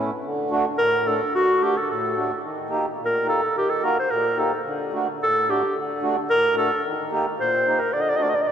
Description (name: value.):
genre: klezmer.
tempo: 109 BPM.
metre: 2/4.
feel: straight.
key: D phrygian dominant.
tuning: A4 = 440 Hz.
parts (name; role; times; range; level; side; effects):
mellow accordion; accompaniment; 0.0-8.5 s; A2 to A4; -25 LUFS; right 2 dB; none.
warm clarinet; melody; 0.8-8.5 s; F#4 to Eb5; -21 LUFS; equal; none.
room: wet cathedral reverb, RT60 4.4 s.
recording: recorded in a church or concert hall.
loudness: -20 LUFS.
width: side -8 dB against mid.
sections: 0.2-8.5 A section.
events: none.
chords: 0.2 D; 2.5 Eb; 4.7 D; 6.8 Eb; 7.9 D.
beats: | 0.25 0.80 | 1.36 1.91 | 2.46 3.01 | 3.56 4.11 | 4.66 5.21 | 5.75 6.30 | 6.84 7.39 | 7.93 8.47.